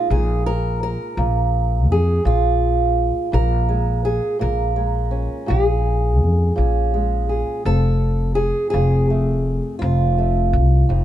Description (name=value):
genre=acoustic country blues, solo or duo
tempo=56 BPM (dotted quarters)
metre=12/8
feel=straight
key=Bb minor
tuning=A4 = 440 Hz
part: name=fingerpicked old ladder-braced acoustic guitar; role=melody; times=0.0-11.0 s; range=F2 to Bb4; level=-21 LUFS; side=right 2 dB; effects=plate reverb
part: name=upright bass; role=bass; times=0.1-11.0 s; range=F1 to F2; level=-18 LUFS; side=left 1 dB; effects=none
room=light reverb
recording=dark, warm production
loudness=-17 LUFS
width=side -12 dB against mid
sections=0.0-11.0 A section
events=none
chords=0.0 Bbm7; 7.7 F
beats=0.11 1.19 2.27 | 3.35 4.42 5.50 6.58 | 7.66 8.74 9.82 10.90